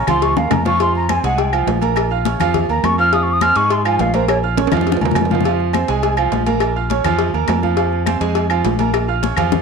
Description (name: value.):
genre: latin, salsa.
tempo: 207 BPM.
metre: 4/4.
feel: straight.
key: F minor.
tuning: A4 = 439 Hz.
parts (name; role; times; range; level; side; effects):
mellow hollow jazz flute; melody; 0.0-4.4 s; C5 to F6; -18 LUFS; left 2 dB; none.
bright grand piano; accompaniment; 0.0-9.6 s; F3 to F6; -20 LUFS; right 10 dB; none.
fingered electric bass; bass; 0.1-9.6 s; Bb1 to Ab2; -21 LUFS; equal; none.
agogo bells and timbales; percussion; 0.1-9.5 s; none; -22 LUFS; right 8 dB; none.
claves; percussion; 0.1-9.5 s; none; -30 LUFS; left 12 dB; none.
congas; percussion; 0.1-9.6 s; none; -24 LUFS; left 10 dB; none.
cowbell and bongos; percussion; 0.1-9.6 s; none; -22 LUFS; left 12 dB; none.
room: moderate echo chamber reverb, RT60 1.3 s, studio ambience.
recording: 1960s-style stereo with parts hard left and right.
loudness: -14 LUFS.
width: side -5 dB against mid.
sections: 0.0-5.5 A section; 5.5-9.6 B section.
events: flute solo 0.0-5.5; drum fill 0.4-0.8, 4.6-5.5.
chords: 0.0 Bbm; 0.8 Fm; 2.0 Bbm; 3.1 Fm; 4.3 Bbm; 5.5 Fm; 6.6 Bbm; 7.8 Fm; 8.9 Bbm.